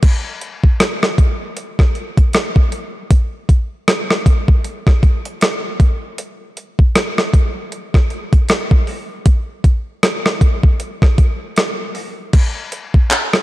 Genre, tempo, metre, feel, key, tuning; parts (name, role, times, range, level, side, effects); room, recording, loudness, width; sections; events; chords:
R&B; 78 BPM; 4/4; swing 58% on 16ths
gated 80s digital drum machine; drums; 0.0-13.4 s; crash cymbal, handclaps, hi-hat, kick drum, rim click; -13 LUFS; equal; gated reverb, overdrive
light reverb; dark, warm production; -13 LUFS; side -17 dB against mid
0.0-12.3 A section; 12.3-13.4 B section